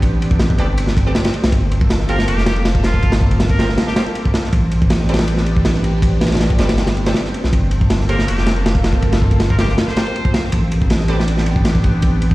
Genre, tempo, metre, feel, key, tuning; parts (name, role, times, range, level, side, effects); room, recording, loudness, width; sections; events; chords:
drum and bass, jungle; 160 BPM; 4/4; straight; A4 = 441 Hz
lush unison pad; sustained chords; 0.0-12.3 s; Bb3 to A4; -25 LUFS; equal; chorus, phaser, vintage 12-bit sampler grit
saturated sub bass; bass; 0.0-12.3 s; F1 to B1; -18 LUFS; equal
crunchy breakbeat drum kit; drums; 0.0-12.3 s; kick drum, ride cymbal, snare drum; -16 LUFS; equal
orchestra-hit-like synth stab; stabs; 0.6-11.2 s; Bb3 to D5; -28 LUFS; right 2 dB; built-in reverb, dub echo
trumpet with straight mute; melody; 2.1-4.0, 8.1-10.4 s; F4 to C5; -27 LUFS; equal; dub echo
small room ambience; played on a big sound system in a bare room, large studio reverb, vinyl crackle; -13 LUFS; side -18 dB against mid
0.0-12.3 A section
break 6.8-7.5
0.0 Am11; 1.5 Gm11; 4.5 Am11; 7.5 Gm11; 10.5 Am11